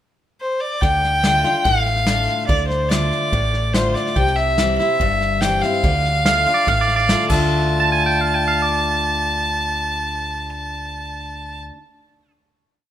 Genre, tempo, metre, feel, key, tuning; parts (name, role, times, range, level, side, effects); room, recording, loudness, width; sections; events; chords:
honky-tonk and classic country; 144 BPM; 4/4; straight; D minor; A4 = 440 Hz
rich fiddle; melody; 0.4-11.6 s; C5 to A5; -20 LUFS; equal
picked steel-string acoustic guitar; accompaniment; 0.8-11.8 s; G2 to F4; -24 LUFS; left 3 dB
deep dub fingered electric bass; bass; 0.8-11.7 s; G1 to D2; -24 LUFS; right 1 dB
vintage brush drum kit; drums; 0.8-7.4 s; crash cymbal, hi-hat, kick drum, snare drum; -23 LUFS; equal
twangy electric guitar; second line; 6.3-12.3 s; D5 to A5; -21 LUFS; right 5 dB
moderate recital hall reverb, RT60 1.5 s; minimal, uncompressed stereo recording; -16 LUFS; side -11 dB against mid
0.0-0.8 pickup bar; 0.8-7.5 A section; 7.5-10.9 final chord
0.0 N.C.; 0.8 Dm; 4.2 C; 5.8 Dm